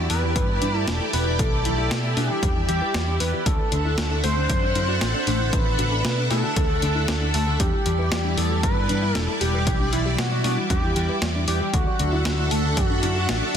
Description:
synthwave; 116 BPM; 4/4; straight; E minor; A4 = 440 Hz
wide unison lead; melody; 0.0-13.6 s; E4 to C5; -27 LUFS; equal; tape echo
string machine, full ensemble; sustained chords; 0.0-13.6 s; G3 to F#5; -28 LUFS; equal; ensemble chorus, sidechain pumping
soft round pluck; arpeggios; 0.0-13.6 s; D4 to D5; -34 LUFS; left 2 dB; chorus, cassette tape, tape echo
mellow electric guitar; riff; 0.0-13.6 s; D3 to E4; -33 LUFS; left 3 dB; ensemble chorus, tape echo
picked electric bass; bass; 0.0-13.6 s; E1 to B2; -25 LUFS; equal
clean 12-bit digital drum machine; drums; 0.1-13.6 s; hi-hat, snare drum; -28 LUFS; left 1 dB
electronic kick drum; drums; 0.4-12.9 s; -25 LUFS; equal; overdrive
light reverb; dense, heavily limited modern master; -20 LUFS; side -8 dB against mid
0.0-13.6 A section
0.0 Em7; 3.5 Dadd9; 7.6 Em7; 11.7 Dadd9

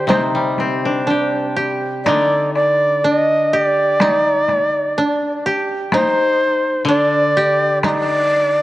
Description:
japanese traditional, Japanese chamber music; 62 BPM; 2/4; rubato; A4 = 440 Hz
bright reedy shakuhachi; melody; 0.0-8.6 s; C5 to Eb5; -16 LUFS; equal; cassette tape
koto; second line; 0.0-8.6 s; D4 to G4; -20 LUFS; right 1 dB; cassette tape
koto; accompaniment; 0.0-8.6 s; C3 to G4; -23 LUFS; left 2 dB; cassette tape
taiko ensemble; percussion; 0.1-8.1 s; -22 LUFS; equal
moderate lush hall reverb, RT60 2.9 s; home recording on cassette; -14 LUFS; side -16 dB against mid
0.0-8.6 A section

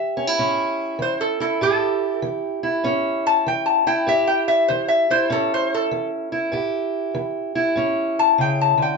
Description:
blues; 97 BPM; 4/4; swing 66% on 8ths; A mixolydian; A4 = 440 Hz
lap resonator guitar; melody; 0.0-9.0 s; A4 to A5; -19 LUFS; left 2 dB
fingerpicked steel-string acoustic guitar; accompaniment; 0.0-9.0 s; A2 to G4; -22 LUFS; right 2 dB
wet studio reverb, RT60 0.5 s; band playing live in one room, nothing above 7.9 kHz; -18 LUFS; side -4 dB against mid
0.0-9.0 A section
resonator guitar played with a steel bar solo 0.0-9.0
0.0 A7

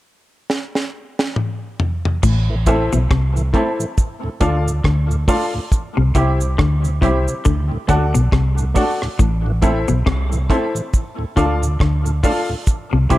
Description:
roots reggae; 69 BPM; 4/4; swing 59% on 16ths; A minor; A4 = 441 Hz
deep reggae drum kit; drums; 0.5-13.2 s; crash cymbal, hi-hat, kick drum, rim click, snare drum, toms; -18 LUFS; equal
semi-hollow electric guitar; riff; 2.2-13.2 s; A2 to D3; -23 LUFS; left 4 dB
vintage muted fingered electric bass; bass; 2.2-13.2 s; A1 to D2; -18 LUFS; equal
cabasa; percussion; 2.2-13.2 s; -32 LUFS; right 6 dB
tonewheel organ; accompaniment; 2.5-13.2 s; D2 to F#4; -26 LUFS; right 1 dB; chorus vibrato, stopped rotary speaker, tape echo
electric guitar with an envelope filter; accompaniment; 2.7-13.2 s; G3 to A4; -27 LUFS; right 5 dB; tape echo
warm upright piano; stabs; 2.7-13.2 s; E4 to F#5; -24 LUFS; left 3 dB
light reverb, small room reverb; dark, warm production; -16 LUFS; side -16 dB against mid
0.0-2.2 A section; 2.2-13.2 B section
drum fill 0.5-2.2
0.0 N.C.; 2.2 Am; 4.0 Dm; 5.7 C; 7.5 D; 9.2 Am; 10.9 Dm; 12.7 C

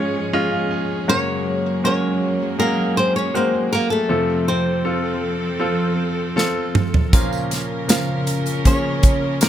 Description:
pop ballad; 80 BPM; 4/4; straight; Bb minor; A4 = 440 Hz
flamenco guitar; melody; 0.0-9.5 s; Ab3 to F5; -22 LUFS; equal
warm baby grand piano; accompaniment; 0.0-9.5 s; F2 to Ab5; -22 LUFS; left 1 dB
warm studio string section; sustained chords; 0.0-9.5 s; Ab2 to Bb4; -25 LUFS; right 1 dB
modern studio drum kit; drums; 6.4-9.5 s; hi-hat, kick drum, snare drum, toms; -16 LUFS; equal
warm studio cello section; second line; 7.1-9.5 s; Db3 to Db4; -27 LUFS; left 2 dB
tambourine; percussion; 7.1-9.5 s; -32 LUFS; right 10 dB
small room reverb; -17 LUFS; side -10 dB against mid
0.0-9.5 A section
grand piano fill 0.0-1.1; drum fill 6.4-7.1
0.0 Db/Ab; 1.1 Gbadd9; 4.1 F; 7.1 Bbmadd9

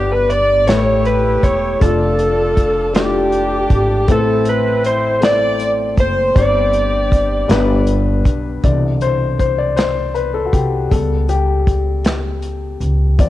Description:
slow gospel; 53 BPM (dotted quarters); 6/8; straight; A4 = 438 Hz
electric slide guitar; melody; 0.0-7.9 s; G4 to D5; -19 LUFS; right 3 dB
warm horn section; melody; 0.0-7.9 s; C4 to D5; -18 LUFS; equal
warm concert grand piano; accompaniment; 0.0-13.3 s; G2 to D5; -20 LUFS; left 6 dB
upright bass; bass; 0.0-13.3 s; E1 to D2; -19 LUFS; equal
warm soul drum kit; drums; 0.3-13.3 s; hi-hat, kick drum, snare drum; -16 LUFS; equal; cassette tape
light reverb; home recording on cassette, lossy compression artefacts; -13 LUFS; side -14 dB against mid
0.0-8.6 A section; 8.6-13.3 B section
grand piano solo 8.6-13.3
0.0 G; 0.7 A7; 1.8 Dm/F; 4.1 Am; 6.4 Gsus4; 7.5 G; 8.6 Cmaj7; 10.9 A9/C#

